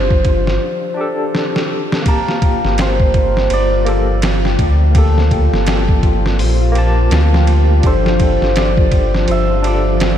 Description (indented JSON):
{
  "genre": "trip hop",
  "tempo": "83 BPM",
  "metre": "4/4",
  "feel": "swing 60% on 16ths",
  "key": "G minor",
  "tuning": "A4 = 440 Hz",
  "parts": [
    { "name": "hammered dulcimer", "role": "melody", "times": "0.0-10.2 s", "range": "A4 to E5", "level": "-21 LUFS", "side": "equal", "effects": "tape echo" },
    { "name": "barky tine electric piano", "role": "accompaniment", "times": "0.0-9.9 s", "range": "Bb3 to A5", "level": "-22 LUFS", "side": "equal", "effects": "tremolo, tape echo" },
    { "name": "string machine, cellos", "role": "sustained chords", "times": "0.0-10.2 s", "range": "F3 to F4", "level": "-22 LUFS", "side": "right 1 dB", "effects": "ensemble chorus" },
    { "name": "warm sub bass", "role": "bass", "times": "0.0-10.2 s", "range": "G1 to D2", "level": "-14 LUFS", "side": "equal", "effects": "none" },
    { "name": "bowed-like drone", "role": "texture", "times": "0.0-0.6 s", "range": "F3 to F4", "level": "-28 LUFS", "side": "left 1 dB", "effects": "built-in reverb" },
    { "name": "trip hop sampler-style drum kit", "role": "drums", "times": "0.1-10.2 s", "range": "hi-hat, kick drum, ride cymbal, snare drum", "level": "-17 LUFS", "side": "equal", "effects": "none" },
    { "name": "concert harp", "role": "arpeggios", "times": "2.1-10.2 s", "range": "F4 to G5", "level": "-24 LUFS", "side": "left 5 dB", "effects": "ping-pong delay" }
  ],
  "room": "light reverb",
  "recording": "none",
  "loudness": "-12 LUFS",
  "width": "side -10 dB against mid",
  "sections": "0.0-2.1 A section; 2.1-10.2 B section",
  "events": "break 0.6-2.1; drum fill 1.3-2.1",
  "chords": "0.0 F6/G; 2.1 Gmadd9",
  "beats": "0.61 1.33 | 2.06 2.78 3.50 4.22 | 4.95 5.67 6.39 7.12 | 7.84 8.56 9.29 10.01"
}